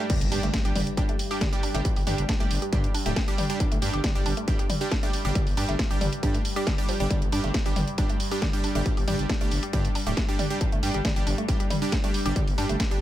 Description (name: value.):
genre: driving peak-time techno.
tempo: 137 BPM.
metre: 4/4.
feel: straight.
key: unclear.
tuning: A4 = 440 Hz.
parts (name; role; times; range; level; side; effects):
woody wave-folded pluck; riff; 0.0-13.0 s; F3 to G4; -34 LUFS; equal; chorus, overdrive, sidechain pumping, ping-pong delay.
supersaw stab; stabs; 0.0-13.0 s; G3 to G4; -31 LUFS; right 3 dB; sidechain pumping, tape echo.
overtone-sweeping drone; drone; 0.0-13.0 s; G2 to G3; -36 LUFS; left 2 dB; chorus, built-in reverb, sidechain pumping.
electronic kick drum; drums; 0.1-12.9 s; none; -26 LUFS; equal; distortion.
techno drum kit; drums; 0.1-13.0 s; crash cymbal, hi-hat, snare drum, toms; -31 LUFS; equal; none.
impact; sound effects; 0.1-1.9 s; none; -37 LUFS; equal; none.
growling FM bass; bass; 0.2-13.0 s; D1 to G2; -29 LUFS; equal; sidechain pumping.
room: little or no reverb.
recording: none.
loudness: -23 LUFS.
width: side -13 dB against mid.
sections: 0.1-13.0 A section.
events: drop 0.1-13.0; impact 0.1-1.9.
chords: 0.1 G5.